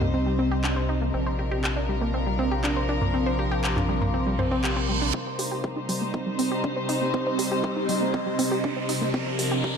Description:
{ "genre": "melodic techno", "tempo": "120 BPM", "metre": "4/4", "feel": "straight", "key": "C minor", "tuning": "A4 = 439 Hz", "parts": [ { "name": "warm studio string section", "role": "sustained chords", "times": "0.0-9.8 s", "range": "F3 to C5", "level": "-31 LUFS", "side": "left 1 dB", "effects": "sidechain pumping, low-pass filter" }, { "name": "wide unison pluck", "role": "arpeggios", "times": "0.0-9.7 s", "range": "G3 to C5", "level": "-29 LUFS", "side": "equal", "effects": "sidechain pumping, tape echo" }, { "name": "round analog bass", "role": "bass", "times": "0.0-5.1 s", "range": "Bb1 to C2", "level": "-28 LUFS", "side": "equal", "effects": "sidechain pumping" }, { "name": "analog drone", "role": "drone", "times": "0.0-9.8 s", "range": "C3 to C4", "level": "-32 LUFS", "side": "equal", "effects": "chorus, sidechain pumping" }, { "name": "house drum kit", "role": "drums", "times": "0.0-9.5 s", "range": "handclaps, hi-hat, toms", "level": "-30 LUFS", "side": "equal", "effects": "sidechain pumping on toms, sidechain pumping on hats" }, { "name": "granular cloud pad", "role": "texture", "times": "0.0-9.8 s", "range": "C4 to D6", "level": "-31 LUFS", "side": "equal", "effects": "built-in reverb, sidechain pumping" }, { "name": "reverse cymbal and riser", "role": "sound effects", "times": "4.4-9.8 s", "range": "none", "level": "-34 LUFS", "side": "right 4 dB", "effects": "none" }, { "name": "electronic kick drum", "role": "drums", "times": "5.1-9.7 s", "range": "none", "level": "-32 LUFS", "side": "equal", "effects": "high-pass filter on kick" } ], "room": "moderate scoring stage reverb, RT60 1.6 s, digital ambience", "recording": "dark, warm production", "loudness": "-23 LUFS", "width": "side -6 dB against mid", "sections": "0.0-5.1 A section; 5.1-9.8 B section", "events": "reverse cymbal 4.4-5.1; build-up 5.1-9.8; riser 5.1-9.8", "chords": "0.0 Cm; 1.1 Bb; 5.1 Cm; 9.1 Bb", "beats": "0.14 0.64 | 1.14 1.64 2.14 2.64 | 3.14 3.64 4.14 4.64 | 5.14 5.64 6.14 6.64 | 7.14 7.64 8.14 8.64 | 9.14 9.64" }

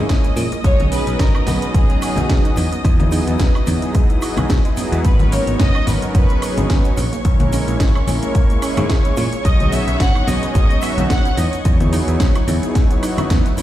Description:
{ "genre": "nu-disco, nu disco", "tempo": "109 BPM", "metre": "4/4", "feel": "swing 55% on 16ths", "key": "unclear", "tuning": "A4 = 440 Hz", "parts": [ { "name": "warm analog pad", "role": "accompaniment", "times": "0.0-13.5 s", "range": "F#3 to C#5", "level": "-23 LUFS", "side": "equal", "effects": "chorus, sidechain pumping, dub echo" }, { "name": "muted studio string section", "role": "sustained chords", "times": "0.0-13.6 s", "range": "C#5 to D#6", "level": "-29 LUFS", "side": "equal", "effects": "sidechain pumping" }, { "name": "analog pluck", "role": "arpeggios", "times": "0.0-13.6 s", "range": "F#3 to G#4", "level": "-29 LUFS", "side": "right 4 dB", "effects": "chorus, sidechain pumping, ping-pong delay" }, { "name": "modern bright picked electric bass", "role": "bass", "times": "0.0-13.4 s", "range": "F#1 to A#2", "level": "-20 LUFS", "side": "equal", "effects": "none" }, { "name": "electronic kick drum", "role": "drums", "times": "0.1-13.4 s", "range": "none", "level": "-15 LUFS", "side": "equal", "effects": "small room ambience" }, { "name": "house drum kit", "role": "drums", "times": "0.1-13.6 s", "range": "hi-hat, shaker, snare drum, woodblock", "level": "-26 LUFS", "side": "right 1 dB", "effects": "small room ambience" }, { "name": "cabasa and congas", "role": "percussion", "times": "0.1-13.6 s", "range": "none", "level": "-26 LUFS", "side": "left 3 dB", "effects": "none" }, { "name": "warm studio violin section", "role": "melody", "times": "0.6-11.7 s", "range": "G#4 to F#5", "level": "-25 LUFS", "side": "equal", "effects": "ping-pong delay" } ], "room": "digital ambience", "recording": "played on a big sound system in a bare room, stone room reverb", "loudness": "-14 LUFS", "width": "side -13 dB against mid", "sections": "0.0-13.6 A section", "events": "none", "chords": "0.0 A#m7b5; 0.6 B6; 2.6 Emaj7; 5.0 G#m11; 7.0 A#m7b5; 9.5 B6; 11.4 Emaj7", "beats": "0.09 | 0.64 1.19 1.74 2.29 | 2.85 3.40 3.95 4.50 | 5.05 5.60 6.15 6.70 | 7.25 7.80 8.35 8.90 | 9.45 10.00 10.55 11.10 | 11.65 12.20 12.75 13.30" }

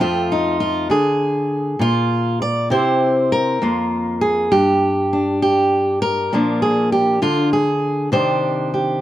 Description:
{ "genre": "folk, solo fingerstyle acoustic guitar", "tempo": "66 BPM (dotted quarters)", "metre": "6/8", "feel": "straight", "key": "C minor", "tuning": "A4 = 440 Hz", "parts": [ { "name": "fingerpicked steel-string acoustic guitar", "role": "solo", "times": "0.0-9.0 s", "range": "F2 to D5", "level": "-16 LUFS", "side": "equal", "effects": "none" } ], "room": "moderate booth ambience, RT60 0.3 s", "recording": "dry, close 1970s-style studio recording", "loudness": "-16 LUFS", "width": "side -13 dB against mid", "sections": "0.0-9.0 A section", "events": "none", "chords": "0.0 F; 0.9 N.C.; 2.7 C; 3.6 Fsus4; 4.5 G5; 6.3 Bb; 7.2 N.C.; 8.1 Cmadd9", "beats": "| 0.90 1.80 | 2.71 3.61 | 4.51 5.42 | 6.32 7.22 | 8.13" }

